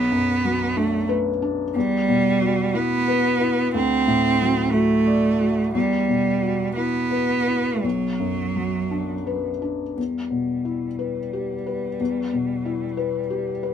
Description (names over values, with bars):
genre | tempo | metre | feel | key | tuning
neoclassical piano and strings | 55-62 BPM (dotted quarters) | 6/8 | rubato | E minor | A4 = 439 Hz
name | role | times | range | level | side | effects
clear cello | second line | 0.0-13.7 s | F#3 to C4 | -22 LUFS | right 4 dB | none
felt-muted upright piano | accompaniment | 0.0-13.7 s | B1 to D5 | -23 LUFS | left 4 dB | none
room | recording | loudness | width
moderate booth ambience, RT60 0.3 s | none | -20 LUFS | side -8 dB against mid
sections
0.0-10.0 A section; 10.0-13.7 B section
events
none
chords
0.0 Bm; 1.8 Emadd9; 3.7 D; 5.7 Emadd9; 7.8 Bm; 10.0 Em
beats
0.77 | 1.75 2.74 | 3.74 4.74 | 5.75 6.77 | 7.84 8.92 | 9.97 10.99 | 12.00 12.98